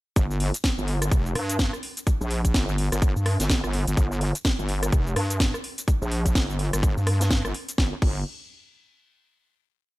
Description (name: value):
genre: bass house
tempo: 126 BPM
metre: 4/4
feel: swing 59% on 16ths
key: G minor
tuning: A4 = 438 Hz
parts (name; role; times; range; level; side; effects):
- wobble bass; bass; 0.2-8.2 s; F1 to G2; -25 LUFS; equal; chorus, tube saturation, sidechain pumping
- electronic kick drum; drums; 0.2-8.1 s; none; -23 LUFS; equal; none
- house drum kit; drums; 0.2-8.1 s; crash cymbal, hi-hat, rim click, shaker, snare drum; -28 LUFS; equal; overdrive
room: little or no reverb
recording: none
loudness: -22 LUFS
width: side -19 dB against mid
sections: 0.2-7.8 drop; 7.8-9.7 final note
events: drop 0.2-7.8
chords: none